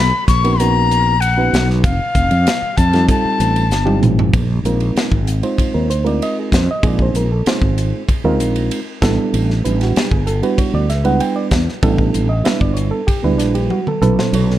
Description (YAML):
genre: electric jazz fusion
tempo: 96 BPM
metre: 4/4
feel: straight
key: unclear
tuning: A4 = 445 Hz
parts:
  - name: breathy bright jazz flute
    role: melody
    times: 0.0-4.0 s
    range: F5 to C#6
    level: -18 LUFS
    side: left 5 dB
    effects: none
  - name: fretless electric bass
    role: bass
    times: 0.0-14.6 s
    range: F1 to F2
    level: -17 LUFS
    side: equal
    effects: none
  - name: crisp fusion drum kit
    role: drums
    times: 0.3-14.6 s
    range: hi-hat, kick drum, ride cymbal, snare drum, toms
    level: -19 LUFS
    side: equal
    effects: none
  - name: reed electric piano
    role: accompaniment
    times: 0.4-14.6 s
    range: F#3 to G5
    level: -19 LUFS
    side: right 3 dB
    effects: none
room: little or no reverb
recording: dark, warm production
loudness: -13 LUFS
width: side -13 dB against mid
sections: 0.0-4.3 A section; 4.3-14.6 B section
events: drum fill 3.7-4.3, 13.7-14.3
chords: 0.0 Bmaj9; 1.8 F7; 4.3 Bb9sus4; 9.0 A9sus4; 14.0 B9sus4